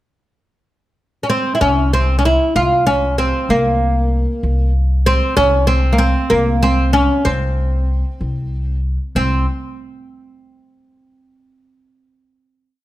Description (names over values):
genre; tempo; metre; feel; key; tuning
arabic; 64 BPM (dotted quarters); 6/8; straight; C maqam hijaz; A4 = 440 Hz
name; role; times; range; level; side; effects
oud; melody; 1.2-9.4 s; Bb3 to F4; -16 LUFS; equal; none
upright bass; bass; 1.6-9.4 s; C2; -17 LUFS; equal; none
room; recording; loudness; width
light reverb; none; -14 LUFS; side -15 dB against mid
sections
0.0-1.6 pickup bar; 1.6-9.2 A section; 9.2-11.0 final note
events
none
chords
none